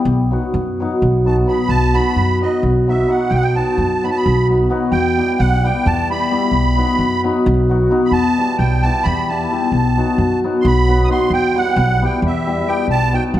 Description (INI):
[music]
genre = balkan folk, Balkan wedding band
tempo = 262 BPM (eighths)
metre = 7/8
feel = straight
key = unclear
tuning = A4 = 440 Hz
[part]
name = cimbalom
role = accompaniment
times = 0.0-13.4 s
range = F#3 to G4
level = -17 LUFS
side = left 2 dB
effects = none
[part]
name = upright bass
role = bass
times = 0.1-13.4 s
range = B1 to F#2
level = -18 LUFS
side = equal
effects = none
[part]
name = musette accordion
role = second line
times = 1.3-13.4 s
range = D#5 to D#6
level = -20 LUFS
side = right 3 dB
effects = none
[sound]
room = wet recital hall reverb, RT60 1.4 s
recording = dark, warm production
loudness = -14 LUFS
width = side -13 dB against mid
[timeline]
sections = 0.0-13.4 A section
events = speeding up 0.0-13.4; accordion solo 0.0-13.4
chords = 0.1 B; 4.9 Em; 6.5 B; 8.1 Em; 9.7 B; 11.3 Em; 12.9 B